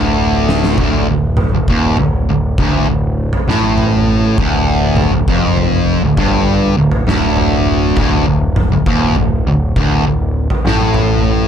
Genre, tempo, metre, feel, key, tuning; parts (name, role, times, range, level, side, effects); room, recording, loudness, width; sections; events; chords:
stoner and doom metal; 67 BPM; 4/4; swing 66% on 8ths; D minor; A4 = 440 Hz
fuzz guitar; riff; 0.0-11.5 s; D2 to A2; -14 LUFS; equal; distortion
growling picked electric bass; bass; 0.0-11.5 s; D1 to A1; -18 LUFS; equal; overdrive
oversized low-tuned drum kit; drums; 0.5-11.2 s; kick drum, snare drum, toms; -17 LUFS; equal
light reverb; dark, warm production; -11 LUFS; side -8 dB against mid
0.0-11.5 A section
drum fill 0.0-0.8
0.0 Dm